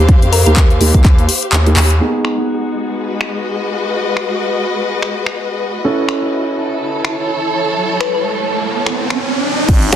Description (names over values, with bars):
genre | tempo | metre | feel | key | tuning
bass house | 125 BPM | 4/4 | swing 58% on 16ths | G# phrygian | A4 = 440 Hz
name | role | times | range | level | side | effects
growling FM bass | bass | 0.0-2.0, 9.7-9.9 s | G#1 to E#2 | -13 LUFS | equal | tube saturation, sidechain pumping
warm studio string section | texture | 0.0-9.7 s | G#3 to E#5 | -19 LUFS | left 1 dB | sidechain pumping
electronic kick drum | drums | 0.1-1.2, 9.7-9.8 s | none | -9 LUFS | equal | overdrive
house drum kit | drums | 0.1-10.0 s | crash cymbal, finger snaps, handclaps, hi-hat | -19 LUFS | left 1 dB | overdrive, low-pass filter on hats, low-pass filter on snare, low-pass filter on cymbals
thumb-piano-like synth pluck | melody | 0.3-0.5, 8.0-8.2 s | A#4 to B4 | -22 LUFS | left 6 dB | chorus, phaser, digital delay
dark grand piano | stabs | 0.5-9.7 s | A#3 to A4 | -19 LUFS | right 2 dB | sidechain pumping, low-pass filter, digital delay
riser | sound effects | 7.4-9.7 s | none | -20 LUFS | right 2 dB | none
growl bass | bass | 9.9-10.0 s | G#1 | -11 LUFS | equal | chorus, tube saturation, sidechain pumping
room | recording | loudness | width
light reverb | dense, heavily limited modern master | -13 LUFS | side -10 dB against mid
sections
0.0-2.0 A section; 2.0-9.7 B section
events
kick drops out 1.5-2.0; drum fill 1.8; band accent 1.8; riser 7.4-9.7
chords
0.0 D#; 2.0 G#m; 5.8 A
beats
| 0.09 0.57 1.05 1.53 | 2.01 2.49 2.97 3.45 | 3.93 4.41 4.89 5.37 | 5.85 6.33 6.81 7.29 | 7.77 8.25 8.73 9.21 | 9.69